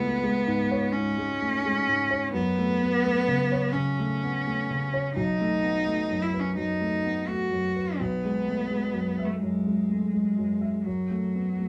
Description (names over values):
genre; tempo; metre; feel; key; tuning
neoclassical piano and strings; 85 BPM; 4/4; rubato; F# dorian; A4 = 440 Hz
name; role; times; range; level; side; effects
clear cello; second line; 0.0-11.7 s; F#3 to F#4; -29 LUFS; equal; none
dark baby grand piano; accompaniment; 0.0-11.7 s; B1 to E5; -30 LUFS; equal; none
room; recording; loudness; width
wet studio ambience, RT60 0.5 s; none; -26 LUFS; mono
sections
0.0-11.7 A section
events
none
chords
0.0 C#5; 2.3 F#m; 5.2 B7; 8.0 Eadd9/B; 10.9 F#m